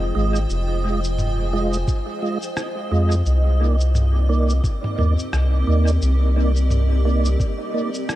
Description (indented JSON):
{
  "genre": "ambient dub",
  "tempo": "87 BPM",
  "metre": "4/4",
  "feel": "swing 58% on 16ths",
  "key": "F dorian",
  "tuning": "A4 = 440 Hz",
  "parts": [
    { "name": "granular cloud pad", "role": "sustained chords", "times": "0.0-8.2 s", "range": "C4 to Ab5", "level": "-29 LUFS", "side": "left 1 dB", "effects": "built-in reverb" },
    { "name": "soft dub sub bass", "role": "bass", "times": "0.0-7.4 s", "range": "F1 to F2", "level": "-18 LUFS", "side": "equal", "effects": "none" },
    { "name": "mellow tonewheel organ", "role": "stabs", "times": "0.2-7.9 s", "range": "Ab3 to Eb5", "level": "-26 LUFS", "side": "right 4 dB", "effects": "chorus vibrato, slow rotary speaker, dub echo" },
    { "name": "lo-fi sampler-style drum kit", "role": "drums", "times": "0.4-8.2 s", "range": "cabasa, rim click, toms", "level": "-30 LUFS", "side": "equal", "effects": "dub echo" },
    { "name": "electronic kick drum", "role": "drums", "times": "1.9-7.6 s", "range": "none", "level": "-22 LUFS", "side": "equal", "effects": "none" }
  ],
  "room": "little or no reverb",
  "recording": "echo-heavy mix",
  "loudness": "-18 LUFS",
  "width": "side -14 dB against mid",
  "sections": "0.0-8.2 A section",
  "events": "none",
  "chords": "0.0 Fm7; 3.3 Cm9"
}